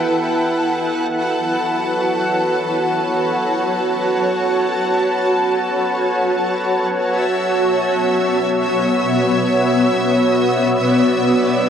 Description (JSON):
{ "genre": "ambient", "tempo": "free time", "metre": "none", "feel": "none", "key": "B minor", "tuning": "A4 = 440 Hz", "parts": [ { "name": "granular cloud pad", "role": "sustained chords", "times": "0.0-11.7 s", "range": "B3 to A5", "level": "-16 LUFS", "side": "equal", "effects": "built-in reverb" }, { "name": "pedal harmonium", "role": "drone", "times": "0.0-7.3 s", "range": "B3 to B4", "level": "-25 LUFS", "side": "equal", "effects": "none" }, { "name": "rich studio violin section", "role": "texture", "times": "0.0-11.7 s", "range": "A4 to E6", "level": "-24 LUFS", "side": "equal", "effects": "none" } ], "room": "wet huge ambient reverb, RT60 8.5 s", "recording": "worn, warbling old tape, cassette tape, warbly pitch drift", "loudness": "-15 LUFS", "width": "side -8 dB against mid", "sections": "0.0-7.2 A section; 7.2-11.7 B section", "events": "none", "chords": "0.3 F#m7; 7.2 Bm7" }